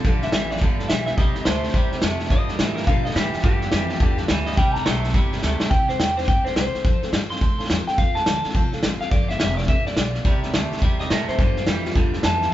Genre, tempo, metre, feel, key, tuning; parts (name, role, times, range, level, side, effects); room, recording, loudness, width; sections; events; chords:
rockabilly; 212 BPM; 4/4; swing 62% on 8ths; C major; A4 = 438 Hz
picked steel-string acoustic guitar; accompaniment; 0.0-12.5 s; G2 to A4; -32 LUFS; left 2 dB
twangy electric guitar; riff; 0.0-5.7, 10.3-12.5 s; G2 to A3; -28 LUFS; right 3 dB
upright bass; bass; 0.0-12.5 s; F1 to B2; -28 LUFS; equal
vintage drum kit; drums; 0.0-12.4 s; hi-hat, kick drum, snare drum; -21 LUFS; equal
electric guitar through a small old amp; melody; 0.2-12.5 s; F4 to C6; -26 LUFS; equal
light reverb; band playing live in one room, nothing above 7.6 kHz; -18 LUFS; side -13 dB against mid
0.0-5.7 A section; 5.7-12.5 A section
clean electric guitar solo 0.0-12.5; drum fill 5.4
0.0 G7; 1.2 C; 2.3 G7; 4.6 C; 6.8 F; 9.1 G7; 10.3 C; 11.4 G7